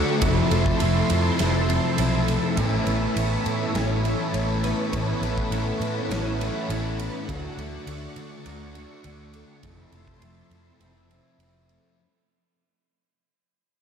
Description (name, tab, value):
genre	rock, shoegaze and dream pop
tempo	102 BPM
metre	4/4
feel	straight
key	unclear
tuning	A4 = 440 Hz
part	analog string pad	sustained chords	0.0-12.0 s	A4 to C#6	-32 LUFS	equal	ensemble chorus
part	picked twelve-string acoustic guitar	arpeggios	0.0-12.0 s	E3 to C#4	-34 LUFS	left 1 dB	ensemble chorus, diffuse ambient delay
part	electric guitar through a small old amp	riff	0.0-12.0 s	A2 to F#4	-30 LUFS	right 9 dB	reverse reverb
part	thick fuzz guitar	riff	0.0-12.0 s	F2 to D4	-28 LUFS	left 7 dB	distortion, lush chorus
part	vintage muted fingered electric bass	bass	0.2-11.8 s	F1 to D3	-27 LUFS	right 1 dB	none
part	huge arena drum kit	drums	0.2-11.8 s	kick drum, ride cymbal, snare drum	-32 LUFS	right 1 dB	none
room	moderate lush hall reverb, RT60 2.9 s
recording	dreamy mix soaked in reverb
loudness	-21 LUFS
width	side -7 dB against mid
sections	0.0-12.0 A section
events	fade-out 0.0-12.0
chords	0.2 Fmaj7; 2.6 Aadd9; 7.3 Dmaj7; 9.6 Fmaj7